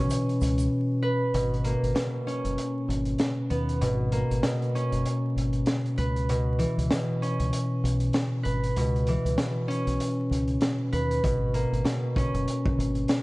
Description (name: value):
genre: hip hop, boom-bap hip-hop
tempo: 97 BPM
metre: 4/4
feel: swing 57% on 16ths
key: G# minor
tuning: A4 = 439 Hz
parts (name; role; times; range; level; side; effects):
- concert harp; accompaniment; 0.0-13.2 s; B2 to B4; -26 LUFS; equal; cassette tape
- deep dub fingered electric bass; bass; 0.0-13.0 s; F#1 to D#2; -29 LUFS; equal; none
- crunchy breakbeat drum kit; drums; 0.1-13.2 s; hi-hat, kick drum, snare drum; -30 LUFS; equal; none
- egg shaker; percussion; 0.1-0.7 s; none; -47 LUFS; right 8 dB; none
room: little or no reverb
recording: vinyl crackle, nothing above 11.0 kHz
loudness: -24 LUFS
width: side -22 dB against mid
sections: 0.0-1.3 A section; 1.3-13.2 B section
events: drums muted 0.7-1.3; kick muted 1.3-11.2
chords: 0.0 C#7(no3); 1.3 G#madd9; 6.0 C#m7; 11.2 G#madd9